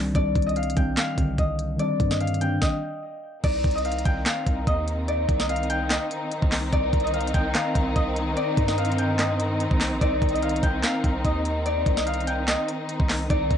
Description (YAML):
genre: hip hop, trap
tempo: 146 BPM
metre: 4/4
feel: half-time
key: C minor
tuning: A4 = 440 Hz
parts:
  - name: muted felt-like synth keys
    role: accompaniment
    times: 0.0-2.8 s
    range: D3 to D4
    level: -27 LUFS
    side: equal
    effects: chorus, cassette tape
  - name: long sustained 808-style bass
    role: bass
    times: 0.0-13.6 s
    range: Bb1 to G2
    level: -29 LUFS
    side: right 1 dB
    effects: none
  - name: trap drum kit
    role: drums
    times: 0.1-13.6 s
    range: crash cymbal, handclaps, hi-hat, kick drum, snare drum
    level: -25 LUFS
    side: right 1 dB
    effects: cassette tape
  - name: concert harp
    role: melody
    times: 0.2-13.6 s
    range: D5 to G5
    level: -27 LUFS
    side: left 2 dB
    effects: cassette tape
  - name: warm studio string section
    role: sustained chords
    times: 3.4-13.6 s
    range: Eb3 to Eb4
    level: -28 LUFS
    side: left 1 dB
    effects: cassette tape
room: little or no reverb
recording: home recording on cassette, nothing above 10.4 kHz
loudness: -22 LUFS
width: side -9 dB against mid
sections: 0.0-3.4 A section; 3.4-13.6 B section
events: break 0.0; stop 2.6-3.4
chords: 0.0 Cmadd9; 3.4 Cm